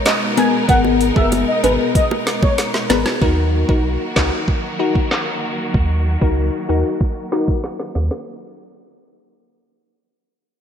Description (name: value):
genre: dancehall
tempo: 95 BPM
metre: 4/4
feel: straight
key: Eb minor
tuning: A4 = 443 Hz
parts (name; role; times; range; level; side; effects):
- warm symphonic string section; sustained chords; 0.0-8.2 s; Cb3 to Bb4; -24 LUFS; equal; none
- warm velvety synth lead; melody; 0.1-3.0 s; Cb5 to Ab5; -20 LUFS; equal; chorus, ping-pong delay
- afro-pop drum kit; drums; 0.1-8.3 s; handclaps, hi-hat, kick drum, snare drum; -19 LUFS; right 1 dB; overdrive, gated reverb
- glassy wavetable pluck; accompaniment; 0.4-7.5 s; Cb4 to Bb4; -20 LUFS; left 4 dB; chorus, sidechain pumping
- bongos; percussion; 0.4-3.0 s; none; -28 LUFS; right 6 dB; none
- warm sub bass; bass; 0.7-8.1 s; Gb1 to Eb2; -19 LUFS; right 1 dB; none
room: moderate lush hall reverb, RT60 2.5 s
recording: bright 1980s-style digital production, low-pass filter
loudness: -15 LUFS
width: side -8 dB against mid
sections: 0.0-3.2 A section; 3.2-8.3 B section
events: drum fill 2.6-3.2, 7.6-8.3; filter sweep 3.2-8.3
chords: 0.0 Abmadd9; 3.2 Ebm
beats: 0.06 | 0.69 1.32 1.95 2.58 | 3.22 3.85 4.48 5.11 | 5.74 6.37 7.01 7.64